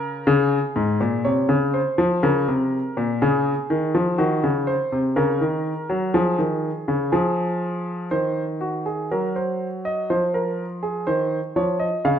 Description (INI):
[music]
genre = classical, baroque-style two-part invention for grand piano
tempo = 61 BPM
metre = 4/4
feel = straight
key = unclear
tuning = A4 = 444 Hz
[part]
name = warm grand piano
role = solo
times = 0.0-12.2 s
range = G#2 to E#5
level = -20 LUFS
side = equal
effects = none
[sound]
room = moderate recital hall reverb, RT60 1.4 s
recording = close, detailed microphones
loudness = -20 LUFS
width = side -8 dB against mid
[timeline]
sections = 0.0-8.1 A section; 8.1-12.2 B section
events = none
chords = 0.3 C#; 2.2 A#m; 4.2 D#m; 6.2 C#; 8.1 Cm7b5/Eb; 10.1 Fm